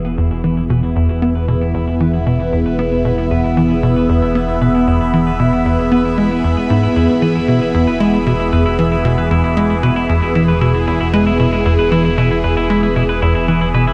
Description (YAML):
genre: ambient, sequencer-driven space music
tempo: 115 BPM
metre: 4/4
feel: straight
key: E major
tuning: A4 = 441 Hz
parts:
  - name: phased analog pad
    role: sustained chords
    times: 0.0-13.9 s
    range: E3 to B5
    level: -18 LUFS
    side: equal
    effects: phaser, chorus
  - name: clean electric guitar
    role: arpeggios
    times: 0.0-13.9 s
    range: E4 to B4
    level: -27 LUFS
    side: equal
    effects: tape echo
  - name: fat analog bass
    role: bass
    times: 0.0-13.9 s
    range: E1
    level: -24 LUFS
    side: equal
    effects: none
  - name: tight sequencer bass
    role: riff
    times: 0.2-13.9 s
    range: E2 to B3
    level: -19 LUFS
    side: equal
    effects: lush chorus, tape echo
room: wet huge ambient reverb, RT60 7.4 s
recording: none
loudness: -15 LUFS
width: mono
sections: 0.0-13.9 A section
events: fade-in on clean electric guitar 0.0-13.9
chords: 0.0 E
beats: 0.18 | 0.70 1.22 1.74 2.27 | 2.79 3.31 3.83 4.35 | 4.88 5.40 5.92 6.44 | 6.96 7.48 8.01 8.53 | 9.05 9.57 10.09 10.61 | 11.14 11.66 12.18 12.70 | 13.22 13.74